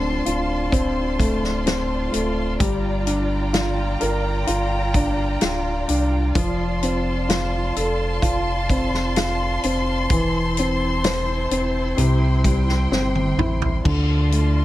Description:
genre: pop ballad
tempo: 64 BPM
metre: 4/4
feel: straight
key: D minor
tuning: A4 = 437 Hz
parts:
  - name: dark upright piano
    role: accompaniment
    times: 0.0-14.6 s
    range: C3 to C5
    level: -23 LUFS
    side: left 1 dB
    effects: none
  - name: dark studio string section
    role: sustained chords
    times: 0.0-14.6 s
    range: E4 to C6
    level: -27 LUFS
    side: equal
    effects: none
  - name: sub bass with octave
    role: bass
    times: 0.0-14.6 s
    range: D1 to D2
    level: -24 LUFS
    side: equal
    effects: none
  - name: loose indie drum kit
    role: drums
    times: 0.3-14.5 s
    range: crash cymbal, hi-hat, kick drum, snare drum, toms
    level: -24 LUFS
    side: equal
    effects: none
room: little or no reverb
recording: none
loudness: -19 LUFS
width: side -15 dB against mid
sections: 0.0-13.9 A section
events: drum fill 12.9-13.9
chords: 0.0 Dm7; 2.6 Gm7; 6.4 Dm7/F; 10.1 Am/E; 12.0 C; 13.9 Dm7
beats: 0.73 1.66 | 2.60 3.54 4.48 5.41 | 6.35 7.29 8.23 9.16 | 10.10 11.04 11.98 12.91 | 13.85

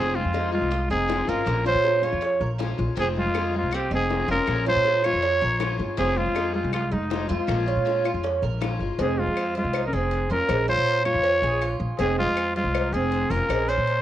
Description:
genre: latin, Cuban son and guajira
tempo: 160 BPM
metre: 4/4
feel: straight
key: F minor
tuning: A4 = 440 Hz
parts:
  - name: growling trumpet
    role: melody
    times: 0.0-14.0 s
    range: Eb4 to Db5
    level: -25 LUFS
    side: equal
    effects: cassette tape
  - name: nylon-string guitar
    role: second line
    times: 0.0-14.0 s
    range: Ab3 to F4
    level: -31 LUFS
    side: right 1 dB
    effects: cassette tape
  - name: picked acoustic archtop guitar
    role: accompaniment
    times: 0.0-9.0 s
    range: C3 to F4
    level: -32 LUFS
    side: left 9 dB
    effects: cassette tape
  - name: Cuban tres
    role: arpeggios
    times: 0.0-14.0 s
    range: Ab3 to Bb4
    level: -28 LUFS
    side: right 6 dB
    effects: cassette tape
  - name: upright bass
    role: bass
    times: 0.0-14.0 s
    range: F1 to Bb2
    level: -28 LUFS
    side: equal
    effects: none
  - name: bongos and cowbell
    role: percussion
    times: 0.3-14.0 s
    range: none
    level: -34 LUFS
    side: left 10 dB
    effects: none
  - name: claves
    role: percussion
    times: 3.3-13.7 s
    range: none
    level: -38 LUFS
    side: left 12 dB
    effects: none
room: moderate spring reverb, RT60 2.6 s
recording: home recording on cassette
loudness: -21 LUFS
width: side -12 dB against mid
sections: 0.0-9.0 A section; 9.0-14.0 A section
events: none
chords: 0.0 Fm7; 1.5 Bbm7; 3.0 Fm7; 4.5 Bbm7; 6.0 Fm7; 7.5 Bbm7; 9.0 Fm7; 10.5 Bbm7; 12.0 Fm7; 13.5 Bbm7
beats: 0.34 0.72 1.09 | 1.47 1.85 2.22 2.60 | 2.98 3.35 3.73 4.11 | 4.48 4.86 5.23 5.61 | 5.99 6.36 6.74 7.11 | 7.49 7.86 8.24 8.62 | 8.99 9.37 9.74 10.12 | 10.49 10.87 11.24 11.62 | 11.99 12.37 12.74 13.12 | 13.49 13.87

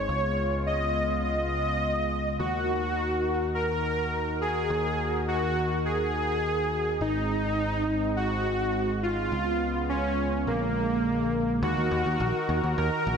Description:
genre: synthwave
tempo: 104 BPM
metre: 4/4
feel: straight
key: Eb minor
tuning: A4 = 440 Hz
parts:
  - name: soft supersaw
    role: melody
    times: 0.0-13.2 s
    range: Bb3 to Eb5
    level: -27 LUFS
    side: equal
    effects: vintage 12-bit sampler grit, digital delay
  - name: warm analog pad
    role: sustained chords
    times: 0.0-13.2 s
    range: Db3 to Bb4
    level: -31 LUFS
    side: equal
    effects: chorus
  - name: picked electric bass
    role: bass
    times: 0.0-13.2 s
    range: Ab1 to Eb2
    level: -32 LUFS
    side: left 1 dB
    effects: tube saturation, low-pass filter
room: moderate lush hall reverb, RT60 2.6 s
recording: none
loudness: -25 LUFS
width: side -6 dB against mid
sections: 0.0-11.6 A section; 11.6-13.2 B section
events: none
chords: 0.1 Db7; 2.4 Ebm; 7.0 Ab; 9.3 Db7; 10.5 Bb7; 11.6 Ebm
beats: | 0.09 0.66 1.24 1.82 | 2.39 2.97 3.55 4.12 | 4.70 5.28 5.86 6.43 | 7.01 7.59 8.16 8.74 | 9.32 9.89 10.47 11.05 | 11.62 12.20 12.78

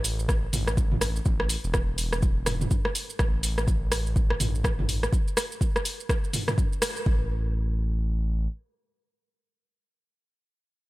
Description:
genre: afro house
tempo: 124 BPM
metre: 4/4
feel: swing 60% on 16ths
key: unclear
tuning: A4 = 440 Hz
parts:
  - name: smooth gliding synth bass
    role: bass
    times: 0.0-8.5 s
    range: E1 to A1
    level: -28 LUFS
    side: equal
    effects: sidechain pumping
  - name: deep house drum kit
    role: drums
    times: 0.0-7.0 s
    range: hi-hat, rim click, shaker, toms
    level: -28 LUFS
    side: equal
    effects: overdrive
  - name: electronic kick drum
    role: drums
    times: 0.3-7.2 s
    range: none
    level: -25 LUFS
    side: equal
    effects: overdrive
room: little or no reverb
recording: none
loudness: -24 LUFS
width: side -19 dB against mid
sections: 0.0-7.1 A section; 7.1-10.9 B section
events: drop 0.0-7.1; band accent 6.8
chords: none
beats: 0.29 0.77 | 1.26 1.74 2.23 2.71 | 3.19 3.68 4.16 4.64 | 5.13 5.61 6.10 6.58 | 7.06 7.55 8.03

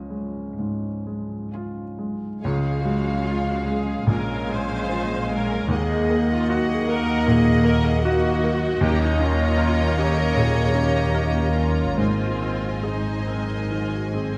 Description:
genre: classical, romantic movement for piano and orchestra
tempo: 75 BPM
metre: 4/4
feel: uneven beats, rubato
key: Db major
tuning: A4 = 442 Hz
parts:
  - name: clear baby grand piano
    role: melody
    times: 0.0-14.4 s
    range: Bb1 to Eb5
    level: -27 LUFS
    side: equal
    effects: none
  - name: warm studio violin section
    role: melody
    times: 0.0-14.4 s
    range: Ab4 to Bb5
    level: -40 LUFS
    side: equal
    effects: none
  - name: warm studio violin section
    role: second line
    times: 0.0-14.4 s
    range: F4 to F5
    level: -37 LUFS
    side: equal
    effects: none
  - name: warm symphonic viola section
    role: accompaniment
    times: 0.0-14.4 s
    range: Db4 to C5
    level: -31 LUFS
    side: equal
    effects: none
  - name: dark French horn section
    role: sustained chords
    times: 0.0-14.4 s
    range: F3 to Eb4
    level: -34 LUFS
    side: equal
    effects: none
  - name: warm studio cello section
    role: bass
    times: 0.6-14.4 s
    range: Eb2 to Db3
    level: -32 LUFS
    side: equal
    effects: none
  - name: mellow clarinet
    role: second line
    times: 2.4-14.4 s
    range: C5 to F5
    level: -36 LUFS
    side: equal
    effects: none
  - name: small flute group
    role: second line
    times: 2.4-14.4 s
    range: Bb4 to Gb5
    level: -36 LUFS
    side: equal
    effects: none
  - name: warm bassoon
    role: accompaniment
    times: 2.4-14.4 s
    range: Ab3 to Bb3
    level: -35 LUFS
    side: equal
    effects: none
  - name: warm studio double bass section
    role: bass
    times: 2.4-14.4 s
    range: Ab1 to Eb2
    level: -29 LUFS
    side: equal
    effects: none
room: moderate scoring stage reverb, RT60 1.6 s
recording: none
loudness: -22 LUFS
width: mono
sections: 0.0-2.4 A section; 2.4-14.4 A section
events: none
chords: 0.0 Db; 4.1 Bbm7; 5.7 Ebm; 8.8 Eb7; 12.0 Ab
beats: 0.58 1.53 | 2.43 3.27 4.09 4.92 | 5.70 6.49 7.27 8.05 | 8.83 9.59 10.36 11.15 | 11.98 12.84 13.69

